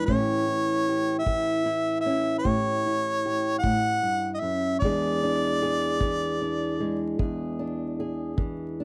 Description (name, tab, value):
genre	acoustic country blues, solo or duo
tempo	51 BPM (dotted quarters)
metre	12/8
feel	straight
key	unclear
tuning	A4 = 436 Hz
part	warm harmonica	melody	0.0-7.1 s	C#5 to F#5	-29 LUFS	equal	none
part	fingerpicked old ladder-braced acoustic guitar	accompaniment	0.0-8.8 s	E2 to G#4	-29 LUFS	equal	none
part	kick drum	drums	0.1-8.6 s	none	-30 LUFS	equal	none
room	little or no reverb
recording	dry, close 1970s-style studio recording, vinyl crackle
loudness	-26 LUFS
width	mono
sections	0.0-8.8 A section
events	none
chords	0.1 A7; 4.8 E7